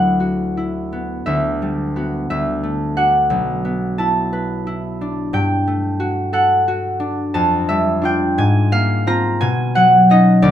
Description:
classical, solo harp piece; 59 BPM (dotted quarters); 6/8; rubato; A4 = 440 Hz
concert harp; solo; 0.0-10.5 s; B1 to A#5; -15 LUFS; equal
light reverb; close, detailed microphones; -15 LUFS; side -10 dB against mid
0.0-10.5 A section
0.0 D69; 1.3 Em9/D; 2.3 Dadd9; 3.3 Bm7; 5.4 Gmaj9; 7.4 F69; 8.4 G#69; 9.4 B69
0.22 | 1.27 2.30 | 3.32 4.34 | 5.35 6.34 | 7.36 8.38 | 9.41 10.43

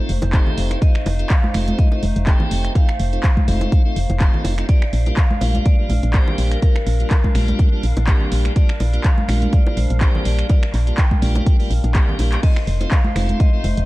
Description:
deep house; 124 BPM; 4/4; swing 55% on 16ths; Bb major; A4 = 441 Hz
warbly tape-like pad; sustained chords; 0.0-13.9 s; G3 to F5; -32 LUFS; equal; chorus, built-in reverb, sidechain pumping
tonewheel organ; stabs; 0.0-13.7 s; G3 to G4; -28 LUFS; equal; overdrive, slow rotary speaker, sidechain pumping, tape echo
woody FM bass; bass; 0.1-13.9 s; F1 to Bb1; -19 LUFS; equal; sidechain pumping
punchy analog drum machine; drums; 0.1-13.9 s; crash cymbal, finger snaps, handclaps, hi-hat; -28 LUFS; equal
bongos and congas; percussion; 0.2-13.7 s; -27 LUFS; right 1 dB; sidechain pumping on perc
electronic kick drum; drums; 0.3-13.5 s; -15 LUFS; equal
vibraphone with medium hard mallets; melody; 0.8-13.9 s; Bb4 to G5; -31 LUFS; equal; digital delay
rich chamber violin section; texture; 12.4-13.9 s; C5 to C6; -36 LUFS; right 1 dB; sidechain pumping
little or no reverb; dark, warm production; -15 LUFS; side -19 dB against mid
0.0-13.9 A section
drum fill 11.9-12.4
0.0 F7; 4.7 Bb6; 12.4 F7
0.34 | 0.82 1.30 1.79 2.27 | 2.75 3.24 3.72 4.21 | 4.69 5.17 5.66 6.14 | 6.62 7.11 7.59 8.08 | 8.56 9.04 9.53 10.01 | 10.50 10.98 11.46 11.95 | 12.43 12.91 13.40

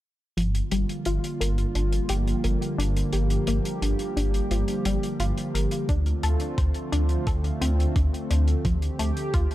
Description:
synthwave; 87 BPM; 4/4; straight; G minor; A4 = 440 Hz
chorused pulse-width pad; sustained chords; 0.4-9.5 s; D3 to G4; -29 LUFS; right 1 dB; sidechain pumping
analog pluck; arpeggios; 0.4-9.5 s; F3 to C5; -32 LUFS; left 2 dB; chorus, cassette tape, tape echo
dark detuned saw bass; bass; 0.4-9.5 s; G1 to D2; -24 LUFS; equal
hi-hat; drums; 0.4-9.5 s; -35 LUFS; left 1 dB
electronic kick drum; drums; 5.9-9.5 s; -26 LUFS; equal
light reverb; -23 LUFS; side -15 dB against mid
0.4-9.5 A section
filter sweep on detuned saw bass 0.4-9.5; filter sweep on analog synth pad 0.4-9.5; filter sweep on synth arpeggio sound 0.4-9.5
0.4 Gm7; 5.9 Dm7
| 0.37 1.06 1.75 2.44 | 3.13 3.82 4.51 5.20 | 5.89 6.58 7.27 7.96 | 8.65 9.34

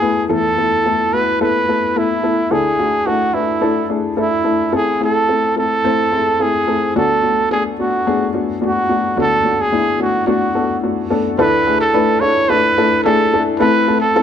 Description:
pop; 108 BPM; 4/4; straight; A4 = 440 Hz
breathy trumpet; melody; 0.0-14.2 s; E4 to C#5; -16 LUFS; right 2 dB; plate reverb
dark upright piano; accompaniment; 0.0-14.2 s; A1 to C5; -17 LUFS; left 3 dB
moderate studio reverb, RT60 0.6 s; -13 LUFS; side -8 dB against mid
0.0-11.4 A section; 11.4-14.2 B section
0.0 Esus4; 2.5 Dsus2; 4.7 Am; 6.9 D6; 11.4 Dsus2; 13.6 Am
| 0.29 0.84 1.40 1.95 | 2.51 3.06 3.62 4.17 | 4.73 5.28 5.84 6.39 | 6.95 7.50 8.06 8.61 | 9.17 9.72 10.28 10.83 | 11.39 11.95 12.50 13.05 | 13.61 14.16

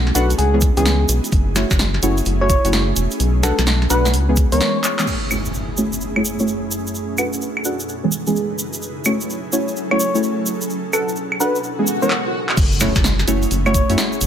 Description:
UK garage, two-step garage; 128 BPM; 4/4; swing 65% on 16ths; F# minor; A4 = 440 Hz
ethereal airy pad; sustained chords; 0.0-14.3 s; F#2 to A4; -27 LUFS; right 1 dB; ensemble chorus, built-in reverb, sidechain pumping
rubbery square bass; bass; 0.0-4.6, 12.6-14.3 s; E1 to F#2; -18 LUFS; equal
soft struck synth lead; melody; 0.1-5.1, 9.9-13.9 s; F#4 to C#5; -23 LUFS; left 1 dB; chorus, ping-pong delay
punchy analog drum machine; drums; 0.1-14.3 s; claves, crash cymbal, handclaps, hi-hat, snare drum; -22 LUFS; equal
deep mellow chord stab; stabs; 0.2-14.3 s; E3 to F#5; -22 LUFS; equal; chorus, ping-pong delay
tube shaker; percussion; 0.2-14.3 s; -27 LUFS; right 2 dB
electronic kick drum; drums; 0.6-4.5, 12.6-13.9 s; -18 LUFS; equal; overdrive
impact and swell; sound effects; 5.1-6.9, 11.8-14.3 s; -27 LUFS; equal
light reverb, digital ambience; -16 LUFS; side -9 dB against mid
0.0-5.1 A section; 5.1-12.6 B section; 12.6-14.3 C section
drum fill 4.8, 12.1-12.6; band accent 5.0; impact 5.1-6.9, 12.6-14.3; filter sweep on synth stab 5.1-12.6; swell 11.8-12.6; drop 12.6-14.3
0.4 C#m7; 1.3 F#m7; 3.2 Bm7; 4.1 C#m7; 5.1 F#m7; 6.9 Bm7; 7.9 C#m7; 8.8 F#m7; 10.7 Bm7; 11.6 C#m7; 12.6 F#m7
0.39 0.85 | 1.32 1.79 2.26 2.73 | 3.20 3.67 4.14 4.61 | 5.07 5.54 6.01 6.48 | 6.95 7.42 7.89 8.36 | 8.82 9.29 9.76 10.23 | 10.70 11.17 11.64 12.11 | 12.57 13.04 13.51 13.98

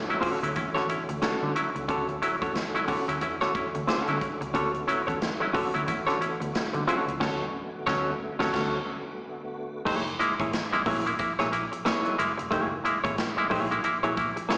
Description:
funk; 90 BPM; 4/4; swing 60% on 16ths; A4 = 440 Hz
tonewheel organ; sustained chords; 0.0-9.8 s; D3 to F#4; -38 LUFS; equal; slow rotary speaker, overdrive, chorus vibrato
semi-hollow electric guitar; accompaniment; 0.1-14.6 s; A#3 to C#5; -31 LUFS; equal; slapback echo
clav; stabs; 0.1-14.6 s; D3 to E4; -32 LUFS; equal; analog delay, slapback echo
swinging big-band drum kit; drums; 0.1-14.6 s; crash cymbal, hi-hat, kick drum, snare drum; -37 LUFS; equal
vintage muted fingered electric bass; bass; 0.2-14.3 s; E#1 to D3; -39 LUFS; equal
moderate club ambience, RT60 0.5 s; live gig heard through the venue's PA, recital hall reverb, small speaker sound; -28 LUFS; mono
0.0-9.9 A section; 9.9-14.6 B section
band accent 7.2-9.9
0.0 Dmaj7; 9.9 F#9
0.56 1.23 | 1.89 2.56 3.22 3.89 | 4.55 5.21 5.88 6.54 | 7.21 7.87 8.54 9.20 | 9.87 10.53 11.19 11.86 | 12.52 13.18 13.84 14.51

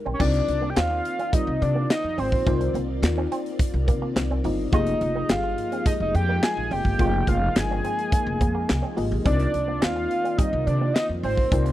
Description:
early-eighties boogie funk; 106 BPM; 4/4; straight; C minor; A4 = 442 Hz
FM electric piano with soft pad layer; accompaniment; 0.0-11.7 s; Ab3 to Eb5; -30 LUFS; left 4 dB; chorus
fat analog lead; melody; 0.1-11.7 s; C5 to Ab5; -26 LUFS; equal; chorus
electric guitar with an envelope filter; riff; 0.1-11.7 s; G3 to F4; -33 LUFS; right 5 dB; wide subtle chorus
upright bass; bass; 0.1-11.7 s; F1 to C3; -26 LUFS; equal
soft string machine; sustained chords; 0.7-11.7 s; Eb3 to D5; -35 LUFS; equal; ensemble chorus
modern studio drum kit; drums; 0.2-11.7 s; crash cymbal, handclaps, hi-hat, kick drum, snare drum; -23 LUFS; equal
studio reverb; dry, close 1970s-style studio recording; -21 LUFS; side -14 dB against mid
0.2-11.7 A section
0.2 Cm11; 4.7 Fm11; 9.3 Cm11
| 0.20 0.77 1.33 1.90 | 2.46 3.03 3.60 4.16 | 4.73 5.29 5.86 6.42 | 6.99 7.56 8.12 8.69 | 9.26 9.82 10.39 10.95 | 11.52

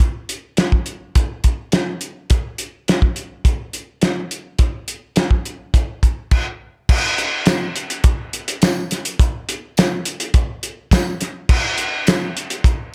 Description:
rock; 105 BPM; 4/4; straight
cloth-damped thuddy drum kit; drums; 0.0-12.8 s; crash cymbal, hi-hat, kick drum, snare drum; -18 LUFS; equal
tambourine; percussion; 7.5-12.2 s; -35 LUFS; equal
light reverb; -19 LUFS; mono
0.0-6.9 A section; 6.9-12.9 B section
stop 6.3-6.9
| 0.01 0.59 1.16 1.73 | 2.31 2.88 3.45 4.03 | 4.60 5.18 5.75 6.32 | 6.90 7.47 8.04 8.62 | 9.19 9.77 10.34 10.91 | 11.49 12.06 12.64

